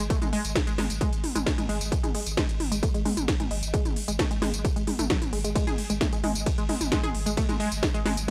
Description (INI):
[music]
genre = driving peak-time techno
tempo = 132 BPM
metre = 4/4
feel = straight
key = unclear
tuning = A4 = 444 Hz
[part]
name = tight sequenced synth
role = riff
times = 0.0-8.3 s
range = F#3 to G#4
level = -33 LUFS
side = equal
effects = chorus, tube saturation, sidechain pumping, tape echo
[part]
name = saturated sub bass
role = bass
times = 0.0-8.3 s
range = G#1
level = -36 LUFS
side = equal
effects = sidechain pumping, low-pass filter
[part]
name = electronic kick drum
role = drums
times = 0.1-8.3 s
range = none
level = -30 LUFS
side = equal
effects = none
[part]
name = techno drum kit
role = drums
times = 0.1-8.3 s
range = hi-hat, ride cymbal, snare drum, tambourine, toms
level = -32 LUFS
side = equal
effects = sidechain pumping on hats, sidechain pumping on cymbals, sidechain pumping on perc, sidechain pumping on toms
[sound]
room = little or no reverb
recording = dry, gritty hardware recording, transformer saturation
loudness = -27 LUFS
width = mono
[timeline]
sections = 0.0-8.3 A section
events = none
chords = none